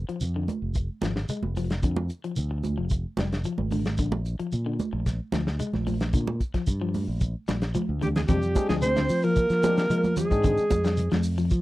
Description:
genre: afrobeat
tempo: 112 BPM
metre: 4/4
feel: straight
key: F dorian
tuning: A4 = 440 Hz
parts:
  - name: fingered electric bass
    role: bass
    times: 0.0-11.6 s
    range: F1 to F3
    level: -28 LUFS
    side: equal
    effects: none
  - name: electric guitar at the edge of break-up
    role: arpeggios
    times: 0.1-11.5 s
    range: C3 to Ab3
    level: -32 LUFS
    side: left 5 dB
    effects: slapback echo
  - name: warm soul drum kit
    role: drums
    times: 0.1-11.6 s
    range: hi-hat, kick drum, snare drum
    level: -28 LUFS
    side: equal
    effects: none
  - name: shekere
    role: percussion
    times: 0.2-11.6 s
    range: none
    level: -34 LUFS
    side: right 2 dB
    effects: none
  - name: congas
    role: percussion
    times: 0.5-11.2 s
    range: none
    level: -31 LUFS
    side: right 4 dB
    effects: none
  - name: breathy alto saxophone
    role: melody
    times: 8.0-11.2 s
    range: G4 to C5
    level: -27 LUFS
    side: equal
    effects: none
  - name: alto flute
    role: second line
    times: 8.0-11.2 s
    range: G4 to C5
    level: -33 LUFS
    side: right 4 dB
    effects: none
  - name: trombone with bucket mute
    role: second line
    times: 8.0-11.2 s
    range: G3 to C4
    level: -32 LUFS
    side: right 2 dB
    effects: none
  - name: barky tine electric piano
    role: accompaniment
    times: 8.3-10.6 s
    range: Ab3 to Ab4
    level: -31 LUFS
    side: left 4 dB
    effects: overdrive
room: little or no reverb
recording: dry, close 1970s-style studio recording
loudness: -24 LUFS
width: side -17 dB against mid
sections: 0.0-8.3 A section; 8.3-11.6 B section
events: drum fill 7.8-8.3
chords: 0.0 Fm6; 4.0 Bb; 8.3 Fm69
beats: 0.22 0.76 1.30 | 1.84 2.38 2.92 3.46 | 3.99 4.53 5.07 5.61 | 6.15 6.68 7.22 7.76 | 8.30 8.83 9.37 9.91 | 10.44 10.98 11.51

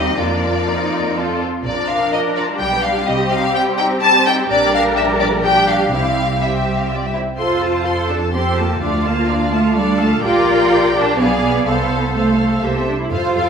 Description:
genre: quick classical-period movement for string orchestra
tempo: 125 BPM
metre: 3/4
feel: straight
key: Bb major, F major from 4.5 s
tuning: A4 = 439 Hz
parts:
  - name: rich symphonic violin section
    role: melody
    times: 0.0-13.5 s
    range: D5 to C6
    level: -20 LUFS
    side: left 2 dB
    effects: none
  - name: clear symphonic violin section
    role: second line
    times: 0.0-13.5 s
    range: G3 to C5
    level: -22 LUFS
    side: left 2 dB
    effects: none
  - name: rich symphonic viola section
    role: accompaniment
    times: 0.0-13.5 s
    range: F3 to F5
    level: -22 LUFS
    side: right 1 dB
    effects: none
  - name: dark symphonic cello section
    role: bass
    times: 0.0-13.5 s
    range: G3 to Bb4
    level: -20 LUFS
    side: right 1 dB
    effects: none
  - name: rich symphonic double bass section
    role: bass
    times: 0.0-13.4 s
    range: Bb1 to F2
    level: -24 LUFS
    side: right 2 dB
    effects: none
room: wet recital hall reverb, RT60 1.5 s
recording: minimal, uncompressed stereo recording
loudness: -14 LUFS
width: side -6 dB against mid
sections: 0.0-7.4 A section; 7.4-13.5 B section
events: none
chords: 0.2 Bb/F; 1.2 F; 1.6 Bb; 2.6 G7/B; 3.1 Cm; 4.5 Gm/Bb; 5.9 C; 7.4 F; 8.8 Dm; 10.2 Gm7/Bb; 11.2 Bdim7; 11.7 F/C; 12.6 C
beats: | 0.19 0.68 1.17 | 1.65 2.12 2.60 | 3.08 3.55 4.03 | 4.50 4.97 5.44 | 5.92 6.41 6.89 | 7.38 7.86 8.34 | 8.81 9.29 9.76 | 10.23 10.71 11.18 | 11.66 12.15 12.63 | 13.12

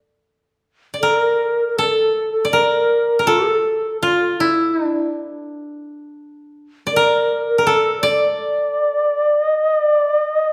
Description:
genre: japanese traditional, Japanese chamber music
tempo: 82 BPM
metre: 4/4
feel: uneven beats, rubato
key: D hirajoshi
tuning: A4 = 441 Hz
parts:
  - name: koto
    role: melody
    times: 0.9-10.5 s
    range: E4 to D5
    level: -21 LUFS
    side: equal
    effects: none
  - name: bright reedy bansuri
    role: second line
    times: 1.0-10.5 s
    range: E4 to D5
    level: -20 LUFS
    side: equal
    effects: none
room: wet recital hall reverb, RT60 1.3 s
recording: recorded in a church or concert hall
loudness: -17 LUFS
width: mono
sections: 1.0-10.5 A section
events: none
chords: none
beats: 0.21 | 1.00 1.76 2.51 3.26 | 4.02 4.76 5.49 6.21 | 6.93 7.65 8.36 9.09 | 9.81

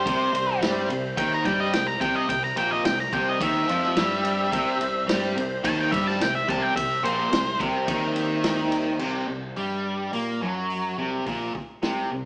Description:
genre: classic rock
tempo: 107 BPM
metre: 4/4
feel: straight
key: C mixolydian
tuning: A4 = 439 Hz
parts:
  - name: octave-fuzz lead guitar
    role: melody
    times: 0.0-7.6 s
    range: C5 to Bb5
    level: -24 LUFS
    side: equal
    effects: distortion
  - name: overdriven tonewheel organ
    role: sustained chords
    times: 0.0-9.0 s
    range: G3 to E5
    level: -32 LUFS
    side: equal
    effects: chorus vibrato, slow rotary speaker
  - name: distorted electric guitar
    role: riff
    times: 0.0-12.3 s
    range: Bb2 to Bb3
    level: -28 LUFS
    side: left 1 dB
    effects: distortion
  - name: overdriven electric guitar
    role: riff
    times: 0.0-12.3 s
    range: Bb2 to Bb3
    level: -30 LUFS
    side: right 1 dB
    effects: none
  - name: growling fingered electric bass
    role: bass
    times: 0.1-12.3 s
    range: Bb1 to Bb2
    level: -32 LUFS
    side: equal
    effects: overdrive
  - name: vintage drum kit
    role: drums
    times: 0.1-12.0 s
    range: crash cymbal, hi-hat, kick drum, ride cymbal, snare drum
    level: -29 LUFS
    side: equal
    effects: none
room: wet large studio reverb, RT60 1.1 s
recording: band playing live in one room, small speaker sound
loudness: -22 LUFS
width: side -27 dB against mid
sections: 0.0-9.0 A section; 9.0-12.3 B section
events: lead electric guitar solo 0.0-9.0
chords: 0.0 C; 9.0 C5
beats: | 0.06 0.62 1.18 1.73 | 2.29 2.85 3.41 3.97 | 4.53 5.08 5.64 6.20 | 6.76 7.32 7.88 8.45 | 9.01 9.57 10.14 10.70 | 11.27 11.84

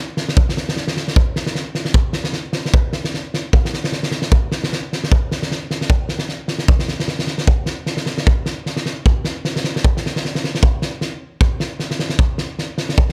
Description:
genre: balkan folk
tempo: 152 BPM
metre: 2/4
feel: swing 56% on 16ths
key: none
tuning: none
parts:
  - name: loose indie drum kit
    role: percussion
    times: 0.2-13.1 s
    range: kick drum, snare drum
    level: -19 LUFS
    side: equal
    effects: none
room: little or no reverb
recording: none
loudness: -19 LUFS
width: mono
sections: 0.0-7.5 A section; 7.5-13.1 B section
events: none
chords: none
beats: | 0.37 0.77 | 1.16 1.56 | 1.96 2.35 | 2.75 3.14 | 3.54 3.94 | 4.33 4.73 | 5.12 5.52 | 5.91 6.30 | 6.70 7.09 | 7.49 7.88 | 8.27 8.67 | 9.06 9.45 | 9.84 10.24 | 10.63 11.02 | 11.41 11.80 | 12.19 12.58 | 12.97

